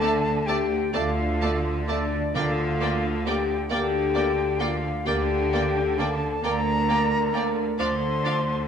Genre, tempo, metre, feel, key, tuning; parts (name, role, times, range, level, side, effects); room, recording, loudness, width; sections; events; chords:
classical; 44 BPM (dotted quarters); 12/8; rubato; A4 = 441 Hz
rich symphonic violin section; melody; 0.0-8.3 s; F5 to A5; -37 LUFS; right 1 dB
clear oboe; second line; 0.0-8.4 s; D5; -35 LUFS; right 2 dB
silver concert flute; second line; 0.0-8.7 s; D5 to C6; -30 LUFS; left 1 dB
warm symphonic violin section; second line; 0.0-8.3 s; D5; -37 LUFS; left 2 dB
rich symphonic viola section; accompaniment; 0.0-8.3 s; A3 to D4; -35 LUFS; right 2 dB
warm bassoon; accompaniment; 0.0-8.4 s; F3 to Bb3+21c; -35 LUFS; right 3 dB
mellow French horn section; sustained chords; 0.0-8.7 s; D4 to C5; -27 LUFS; left 6 dB
rich studio double bass section; bass; 0.0-8.7 s; D2; -28 LUFS; right 3 dB
rich symphonic cello section; bass; 0.0-8.7 s; D3; -30 LUFS; right 2 dB
timpani; percussion; 2.4-3.7 s; D3; -34 LUFS; right 1 dB
wet recital hall reverb, RT60 1.6 s; -22 LUFS; side -7 dB against mid
0.0-8.7 A section
0.0 Dm; 2.3 Gm/D; 7.8 Dm